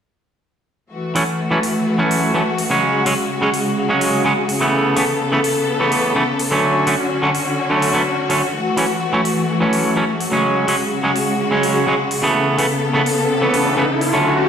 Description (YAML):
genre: EDM, festival progressive house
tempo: 126 BPM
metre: 4/4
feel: straight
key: F# minor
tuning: A4 = 440 Hz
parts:
  - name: bright studio string section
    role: sustained chords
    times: 0.9-14.5 s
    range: C#3 to A4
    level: -19 LUFS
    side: left 1 dB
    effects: none
  - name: clean electric guitar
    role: accompaniment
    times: 1.1-14.5 s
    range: C#3 to C#4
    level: -18 LUFS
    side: right 1 dB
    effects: ping-pong delay
  - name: electronic hi-hat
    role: drums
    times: 1.2-14.1 s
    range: none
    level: -27 LUFS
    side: left 1 dB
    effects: overdrive
  - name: riser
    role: sound effects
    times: 12.8-14.5 s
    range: none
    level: -21 LUFS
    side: left 1 dB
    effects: none
room: moderate lush hall reverb, RT60 1.8 s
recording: played on a big sound system in a bare room, stone room reverb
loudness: -15 LUFS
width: side -8 dB against mid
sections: 0.9-14.5 A section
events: riser 12.8-14.5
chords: 0.9 F#m7; 2.8 C#sus4; 4.7 Aadd9; 6.6 Dmaj7; 8.5 F#m7; 10.4 C#sus4; 12.3 Aadd9